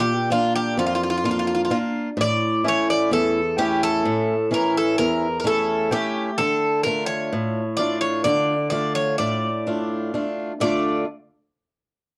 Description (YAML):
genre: greek folk, Greek bouzouki band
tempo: 128 BPM (eighths)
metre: 9/8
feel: straight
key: D harmonic minor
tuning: A4 = 441 Hz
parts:
  - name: Greek bouzouki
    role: melody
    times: 0.0-11.0 s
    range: F4 to D5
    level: -25 LUFS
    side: equal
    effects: cassette tape
  - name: picked swing-style acoustic guitar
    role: accompaniment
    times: 0.0-11.0 s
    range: E2 to A4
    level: -25 LUFS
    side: equal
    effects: cassette tape
room: moderate small room reverb, RT60 0.5 s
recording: home recording on cassette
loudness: -22 LUFS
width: mono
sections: 0.0-10.6 A section; 10.6-12.2 B section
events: none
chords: 0.0 Bb; 2.2 A; 6.4 Dm